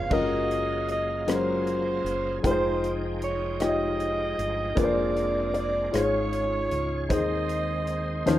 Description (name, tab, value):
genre	slow gospel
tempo	51 BPM (dotted quarters)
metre	6/8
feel	straight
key	Ab major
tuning	A4 = 440 Hz
part	clear alto saxophone	melody	0.0-8.4 s	C5 to F5	-29 LUFS	right 3 dB	none
part	felt-muted upright piano	melody	0.0-8.4 s	Eb4 to Eb5	-34 LUFS	left 2 dB	none
part	warm concert grand piano	accompaniment	0.0-8.4 s	Ab2 to G5	-28 LUFS	left 3 dB	none
part	bright tonewheel organ	sustained chords	0.0-8.4 s	Db3 to G5	-36 LUFS	right 2 dB	slow rotary speaker, overdrive, chorus vibrato
part	fingered electric bass	bass	0.0-8.4 s	F1 to Eb2	-34 LUFS	right 1 dB	none
part	modern studio drum kit	drums	0.1-8.4 s	crash cymbal, hi-hat, kick drum, rim click	-31 LUFS	right 1 dB	none
room	light reverb, studio reverb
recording	rough home demo mix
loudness	-24 LUFS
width	side -13 dB against mid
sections	0.0-8.4 A section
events	none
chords	0.1 Gbmaj9; 2.4 Fm9; 4.8 Bb9/F; 5.9 Db/Ab; 7.1 Ab/Eb